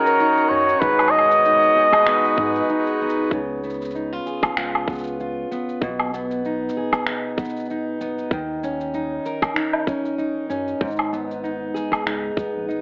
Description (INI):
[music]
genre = folktronica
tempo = 96 BPM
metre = 4/4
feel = swing 56% on 16ths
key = Db mixolydian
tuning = A4 = 442 Hz
[part]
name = warm flugelhorn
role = melody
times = 0.0-3.0 s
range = Bb4 to Eb5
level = -18 LUFS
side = equal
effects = cassette tape
[part]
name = accordion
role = sustained chords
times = 0.0-3.3 s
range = Eb3 to Db5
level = -26 LUFS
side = equal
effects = vintage 12-bit sampler grit, low-pass filter, cassette tape, plate reverb
[part]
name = fingerpicked steel-string acoustic guitar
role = arpeggios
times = 0.0-12.8 s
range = Ab2 to Bb4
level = -27 LUFS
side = equal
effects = cassette tape, analog delay
[part]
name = electronic cabasa, woodblock and finger snaps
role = drums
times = 0.1-12.8 s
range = none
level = -26 LUFS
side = equal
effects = cassette tape
[part]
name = warm sub bass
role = bass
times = 0.5-12.8 s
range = Gb1 to Ab2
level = -40 LUFS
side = equal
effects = none
[part]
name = electronic kick drum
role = drums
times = 0.8-12.5 s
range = none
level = -29 LUFS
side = equal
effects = cassette tape
[sound]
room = moderate booth ambience, RT60 0.2 s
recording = home recording on cassette, AM radio sound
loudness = -22 LUFS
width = mono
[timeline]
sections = 0.0-3.3 A section; 3.3-12.8 B section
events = break 2.7-3.3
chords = 0.0 Ebm7; 0.8 Abm7; 3.3 Db7; 5.8 Cb6; 8.3 Eb7(no3); 10.8 Abm